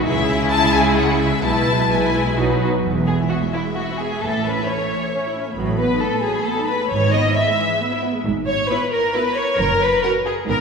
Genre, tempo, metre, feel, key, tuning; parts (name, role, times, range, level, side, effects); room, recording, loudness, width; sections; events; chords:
quick classical-period movement for string orchestra; 134 BPM; 3/4; rubato; E major; A4 = 440 Hz
rich symphonic violin section; second line; 0.0-10.6 s; E4 to E5; -20 LUFS; left 1 dB
rich symphonic viola section; accompaniment; 0.0-10.6 s; E3 to F#4; -24 LUFS; right 1 dB
rich studio violin section; melody; 0.1-10.6 s; E5 to B5; -25 LUFS; left 5 dB
rich symphonic cello section; bass; 0.1-10.6 s; E2 to C#3; -25 LUFS; right 2 dB
rich symphonic double bass section; bass; 0.1-10.6 s; E1 to C#2; -25 LUFS; right 4 dB
wet concert hall reverb, RT60 1.9 s; heard from further back in the room; -17 LUFS; side -5 dB against mid
0.0-2.8 A section; 2.8-10.6 B section
0.1 C#m; 1.4 E/B; 2.4 B; 2.8 E; 4.2 A; 5.6 B7/A; 6.9 E/G#; 9.6 F#5